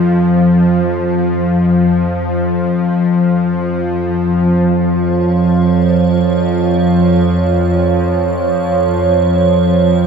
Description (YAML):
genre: dark ambient drone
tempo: free time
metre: none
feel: none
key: unclear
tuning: A4 = 441 Hz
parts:
  - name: bowed-like drone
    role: drone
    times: 0.0-10.1 s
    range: F2 to F3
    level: -11 LUFS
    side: equal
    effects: built-in reverb
  - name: icy glass pad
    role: texture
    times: 5.3-10.1 s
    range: Db5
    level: -17 LUFS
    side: right 7 dB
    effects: chorus, built-in reverb
room: wet cathedral reverb, RT60 5.5 s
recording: dark, warm production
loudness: -11 LUFS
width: side -6 dB against mid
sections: 0.0-4.6 A section; 4.6-10.1 B section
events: none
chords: 0.0 N.C.; 4.6 Db